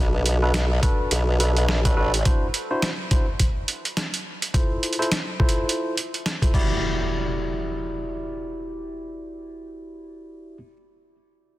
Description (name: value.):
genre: glitch hop.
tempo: 105 BPM.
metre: 4/4.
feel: swing 58% on 16ths.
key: E minor.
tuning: A4 = 437 Hz.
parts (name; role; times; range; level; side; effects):
tine electric piano; stabs; 0.0-10.6 s; D4 to D5; -28 LUFS; equal; overdrive, vintage 12-bit sampler grit, sidechain pumping, dub echo.
formant-sweep wobble bass; bass; 0.0-2.2 s; A1 to B1; -21 LUFS; equal; chorus.
boom bap sampler-style drum kit; drums; 0.3-6.7 s; crash cymbal, hi-hat, snare drum; -27 LUFS; right 1 dB; none.
electronic kick drum; drums; 0.8-6.7 s; none; -21 LUFS; equal; none.
impact; sound effects; 6.5-10.6 s; none; -31 LUFS; equal; none.
room: light reverb.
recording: dense, heavily limited modern master.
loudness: -21 LUFS.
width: side -16 dB against mid.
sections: 0.0-6.8 A section; 6.8-9.1 B section.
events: none.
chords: 0.0 Bm7; 2.3 D9; 4.5 Fmaj7; 6.5 Em9.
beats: 0.54 1.11 1.68 | 2.25 2.83 3.40 3.97 | 4.54 5.11 5.68 6.25 | 6.83 7.40 7.97 8.54.